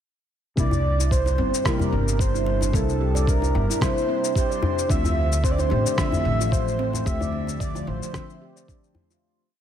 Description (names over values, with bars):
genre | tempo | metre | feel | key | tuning
organic downtempo | 111 BPM | 4/4 | swing 55% on 16ths | D minor | A4 = 440 Hz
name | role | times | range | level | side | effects
breathy flute-like synth lead | melody | 0.6-8.7 s | A4 to E5 | -27 LUFS | equal | analog chorus, tape echo
deep mellow chord stab | accompaniment | 0.6-9.2 s | C3 to E5 | -32 LUFS | left 3 dB | chorus, vintage 12-bit sampler grit, sidechain pumping
warbly tape-like pad | sustained chords | 0.6-9.2 s | C3 to E5 | -33 LUFS | left 2 dB | chorus, built-in reverb, sidechain pumping
handpan | arpeggios | 0.6-9.2 s | C4 to D5 | -31 LUFS | right 4 dB | ping-pong delay
upright bass | bass | 0.6-8.0 s | G1 to D2 | -24 LUFS | equal | sidechain pumping
electronic kick drum | drums | 0.6-8.8 s | none | -25 LUFS | equal | overdrive
electronic shaker and rim click | drums | 0.6-9.2 s | none | -31 LUFS | left 2 dB | overdrive
djembe | percussion | 0.7-9.1 s | none | -30 LUFS | left 1 dB | none
room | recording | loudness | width
light reverb | none | -20 LUFS | side -10 dB against mid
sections
0.6-9.2 groove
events
fade-out 6.3-9.2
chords
0.6 C7; 4.9 Dm9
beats
| 0.58 1.12 1.66 2.20 | 2.74 3.28 3.82 4.36 | 4.90 5.44 5.98 6.52 | 7.06 7.60 8.14 8.68